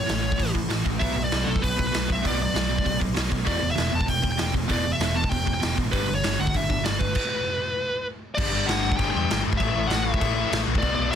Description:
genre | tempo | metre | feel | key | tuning
punk rock | 196 BPM | 4/4 | straight | unclear | A4 = 444 Hz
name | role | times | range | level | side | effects
smooth overdriven lead guitar | melody | 0.0-11.2 s | A4 to A5 | -27 LUFS | equal | none
overdriven electric guitar | riff | 0.0-7.1 s | E2 to B3 | -30 LUFS | right 14 dB | none
raw garage guitar | riff | 0.0-11.1 s | E2 to B3 | -30 LUFS | left 15 dB | overdrive
overdriven picked electric bass | bass | 0.1-11.1 s | E1 to G2 | -29 LUFS | equal | none
raw garage drum kit | drums | 0.1-11.2 s | crash cymbal, hi-hat, kick drum, snare drum | -26 LUFS | equal | none
room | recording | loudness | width
little or no reverb | dense, heavily limited modern master | -22 LUFS | side -8 dB against mid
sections
0.0-8.4 A section; 8.4-11.2 B section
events
stop 7.2-8.4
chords
0.0 A; 1.0 Bm; 3.5 E5; 5.9 G; 8.4 G5; 9.6 A5

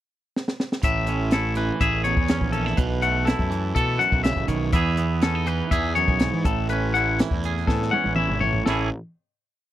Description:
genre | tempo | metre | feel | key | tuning
math rock and midwest emo | 123 BPM | 4/4 | straight | A lydian | A4 = 440 Hz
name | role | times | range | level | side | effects
compact cocktail drum kit | drums | 0.4-8.8 s | hi-hat, kick drum, snare drum, toms | -24 LUFS | equal | none
twangy electric guitar | accompaniment | 0.8-8.9 s | E2 to A4 | -26 LUFS | right 8 dB | none
twangy electric guitar | arpeggios | 0.8-8.9 s | A4 to F#5 | -25 LUFS | left 7 dB | none
fuzz fingered electric bass | bass | 0.8-8.9 s | G#1 to E3 | -26 LUFS | equal | overdrive
room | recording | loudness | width
little or no reverb | dry, close 1970s-style studio recording | -20 LUFS | side -13 dB against mid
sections
0.0-0.8 pickup bar; 0.8-8.7 A section; 8.7-9.7 final chord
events
drum fill 0.4-0.8, 7.7-8.7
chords
0.0 N.C.; 0.8 Amaj9; 2.8 B7sus4; 4.7 Emaj7; 6.5 Amaj7

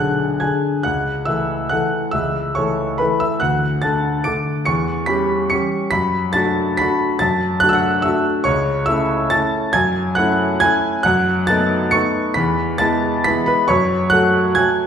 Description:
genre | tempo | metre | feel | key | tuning
classical, piano waltz | 131-151 BPM | 3/4 | rubato | A major | A4 = 440 Hz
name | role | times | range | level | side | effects
clear grand piano | solo | 0.0-14.9 s | B1 to D7 | -15 LUFS | equal | none
room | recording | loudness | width
wet recital hall reverb, RT60 1.5 s | heard from further back in the room | -15 LUFS | side -8 dB against mid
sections
0.0-14.9 A section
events
none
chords
0.0 G#dim/B; 0.9 A/C#; 3.4 D; 4.7 C#dim/E; 5.9 D/F#; 8.5 A/C#; 9.7 F#m7; 11.1 B7/F#; 12.4 E; 13.7 F#m

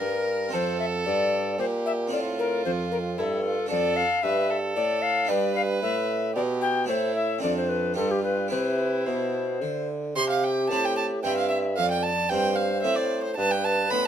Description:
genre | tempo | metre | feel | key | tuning
classical, baroque-style sonata movement with continuo | 113 BPM | 3/4 | straight | F major, C major from 3.7 s | A4 = 443 Hz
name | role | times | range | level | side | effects
tenor recorder | melody | 0.0-14.1 s | G4 to G5 | -27 LUFS | left 4 dB | none
warm violin | second line | 0.0-14.1 s | D4 to C6 | -29 LUFS | right 5 dB | none
harpsichord | accompaniment | 0.0-14.1 s | F2 to B4 | -32 LUFS | right 1 dB | none
mellow bassoon | bass | 0.0-14.1 s | F2 to D3 | -29 LUFS | right 2 dB | none
room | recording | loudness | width
light reverb | close, detailed microphones | -23 LUFS | side -9 dB against mid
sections
0.0-10.2 A section; 10.2-14.1 B section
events
none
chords
0.0 C7/G (rootless); 0.5 F; 3.7 Dm/F; 5.3 G; 6.9 Am; 7.4 Dm7/F; 8.0 G7; 8.5 C; 11.8 F; 13.4 G7

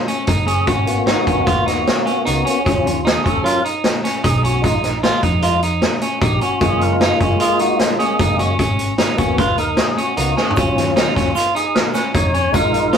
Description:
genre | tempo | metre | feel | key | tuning
progressive instrumental, band music in an uneven meter | 152 BPM | 5/4 | straight | Eb minor | A4 = 438 Hz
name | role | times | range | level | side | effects
tonewheel organ | accompaniment | 0.0-13.0 s | Gb3 to Db5 | -20 LUFS | left 1 dB | slow rotary speaker
electric guitar at the edge of break-up | arpeggios | 0.0-13.0 s | Db4 to F4 | -20 LUFS | right 1 dB | none
vintage drum kit | drums | 0.1-13.0 s | hi-hat, kick drum, snare drum, toms | -19 LUFS | equal | none
hollow-body short-scale picked electric bass | bass | 0.3-13.0 s | Gb1 to F2 | -22 LUFS | equal | none
egg shaker | percussion | 10.6-13.0 s | none | -39 LUFS | left 7 dB | none
room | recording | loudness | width
moderate small room reverb, RT60 0.5 s | rough rehearsal-room recording, warm saturation | -14 LUFS | side -7 dB against mid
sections
0.0-13.0 A section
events
tonewheel organ solo 0.0-13.0; drum fill 10.4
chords
0.0 Gb5; 0.7 Abm7; 2.7 Ebm7; 4.6 Bb7sus4; 6.6 Gbmaj7; 8.6 Abm7; 10.6 Ebm7

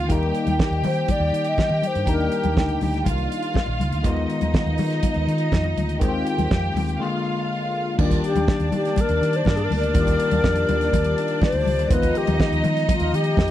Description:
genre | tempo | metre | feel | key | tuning
disco | 122 BPM | 4/4 | straight | Eb major | A4 = 443 Hz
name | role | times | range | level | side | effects
warm symphonic violin section | second line | 0.0-13.5 s | D4 to G5 | -27 LUFS | right 2 dB | slapback echo
barky tine electric piano | accompaniment | 0.0-13.5 s | D3 to G4 | -26 LUFS | left 4 dB | overdrive, phaser
vintage muted fingered electric bass | bass | 0.0-13.5 s | Bb1 to Eb3 | -24 LUFS | right 1 dB | none
damped 70s drum kit | drums | 0.1-13.5 s | crash cymbal, hi-hat, kick drum, snare drum | -22 LUFS | right 1 dB | none
congas | percussion | 0.2-13.5 s | none | -29 LUFS | left 5 dB | none
wooden-headed alto flute | melody | 0.9-2.8, 8.0-13.5 s | F4 to Eb5 | -24 LUFS | left 3 dB | none
room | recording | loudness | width
little or no reverb | dry, close 1970s-style studio recording | -19 LUFS | side -12 dB against mid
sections
0.0-8.0 A section; 8.0-13.5 B section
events
break 7.0-8.0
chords
0.1 Ebmaj7; 4.0 Abm6/Eb; 6.0 Fm7/Eb; 7.0 Bb7; 8.0 Ebmaj7; 11.9 Abm6/Eb

